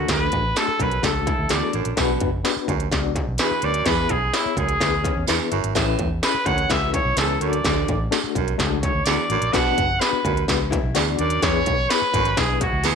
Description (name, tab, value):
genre	uptempo 1960s-style soul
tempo	127 BPM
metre	4/4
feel	straight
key	unclear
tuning	A4 = 441 Hz
part	clear trumpet	melody	0.0-12.9 s	E4 to F#5	-23 LUFS	equal	none
part	mellow reed electric piano	accompaniment	0.0-12.9 s	A3 to D5	-27 LUFS	left 13 dB	fast tremolo
part	warm baritone saxophone	riff	0.0-12.9 s	D2 to B2	-27 LUFS	right 13 dB	none
part	vintage muted fingered electric bass	bass	0.0-12.9 s	F#1 to E2	-26 LUFS	equal	none
part	industrial drum kit	drums	0.1-12.9 s	hi-hat, kick drum, snare drum	-24 LUFS	equal	distortion
part	tambourine	percussion	0.1-12.9 s	none	-31 LUFS	right 14 dB	none
part	vintage hollow-body jazz guitar	riff	1.3-2.2, 5.0-7.4, 10.7-12.9 s	C#4 to G#4	-33 LUFS	left 11 dB	none
room	moderate plate reverb, RT60 1.0 s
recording	1960s-style stereo with parts hard left and right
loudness	-19 LUFS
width	side -6 dB against mid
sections	0.0-12.9 A section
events	trumpet solo 0.0-12.9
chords	0.0 D; 2.0 Bm; 3.9 E; 5.8 Aadd9; 7.4 D; 9.5 Bm; 11.4 E